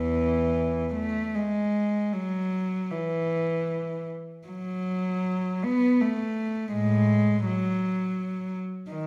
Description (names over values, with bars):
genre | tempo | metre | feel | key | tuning
classical, free, expressive piece for unaccompanied cello | 74-88 BPM | 3/4 | rubato | E major | A4 = 441 Hz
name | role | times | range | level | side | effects
warm cello | solo | 0.0-9.1 s | E2 to B3 | -27 LUFS | equal | none
room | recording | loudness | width
wet stone room reverb, RT60 1.2 s | none | -27 LUFS | mono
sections
0.0-9.1 A section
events
none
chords
none